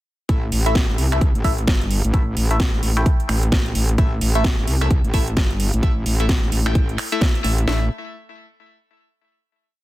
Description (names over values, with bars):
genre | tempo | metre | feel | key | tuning
bass house | 130 BPM | 4/4 | swing 60% on 16ths | A minor | A4 = 441 Hz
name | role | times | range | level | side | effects
band-passed chord stab | stabs | 0.3-7.9 s | A3 to G5 | -27 LUFS | left 1 dB | phaser, sidechain pumping, digital delay
metallic wobble bass | bass | 0.3-7.9 s | G1 to C2 | -20 LUFS | equal | chorus, overdrive, sidechain pumping
house drum kit | drums | 0.3-7.8 s | kick drum, snare drum | -19 LUFS | equal | none
house drum kit | drums | 0.3-7.7 s | finger snaps, hi-hat, snare drum | -25 LUFS | right 1 dB | none
room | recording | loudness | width
little or no reverb | dense, heavily limited modern master | -17 LUFS | side -16 dB against mid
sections
0.3-7.7 drop; 7.7-9.5 final chord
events
drop 0.3-7.7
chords
0.3 A5